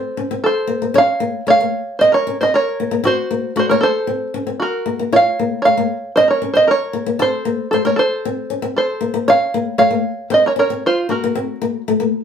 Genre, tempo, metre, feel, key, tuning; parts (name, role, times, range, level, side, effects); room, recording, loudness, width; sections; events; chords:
highlife; 115 BPM; 4/4; straight; A4 = 439 Hz
open-back banjo; melody; 0.0-12.2 s; F4 to F5; -15 LUFS; right 2 dB
flamenco guitar; accompaniment; 0.0-12.2 s; A3 to F4; -21 LUFS; left 5 dB
wet studio ambience, RT60 0.5 s; band playing live in one room; -14 LUFS; side -8 dB against mid
0.0-12.2 A section
0.0 Am; 5.1 Bbmadd9; 7.2 Am; 11.4 Gb